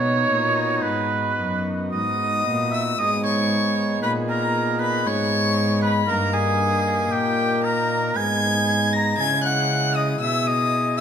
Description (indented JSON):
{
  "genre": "classical, baroque-style sonata movement with continuo",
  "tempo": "58 BPM",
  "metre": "3/4",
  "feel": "straight",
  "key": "G# minor",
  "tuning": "A4 = 439 Hz",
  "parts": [
    { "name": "rich violin", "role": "melody", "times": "0.0-11.0 s", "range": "D#4 to A#6", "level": "-25 LUFS", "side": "left 6 dB", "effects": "none" },
    { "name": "clear oboe", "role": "second line", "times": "0.0-11.0 s", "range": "G4 to A#5", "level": "-24 LUFS", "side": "right 4 dB", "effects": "none" },
    { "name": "pipe organ, cornet", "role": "accompaniment", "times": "0.0-11.0 s", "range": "F#2 to A#4", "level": "-26 LUFS", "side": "left 1 dB", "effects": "none" },
    { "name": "dark cello", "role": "bass", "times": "0.0-11.0 s", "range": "F#2 to C#3", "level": "-25 LUFS", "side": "equal", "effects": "none" }
  ],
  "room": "wet recital hall reverb, RT60 1.6 s",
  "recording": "minimal, uncompressed stereo recording, faint mains hum",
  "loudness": "-19 LUFS",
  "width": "side -8 dB against mid",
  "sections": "0.0-3.0 A section; 3.0-11.0 A section",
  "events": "none",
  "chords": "0.0 B; 3.0 G#m; 6.1 D#/G; 8.2 G#m; 9.2 C#m",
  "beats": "0.83 1.92 | 2.99 4.02 5.05 | 6.08 7.11 8.16 | 9.19 10.21"
}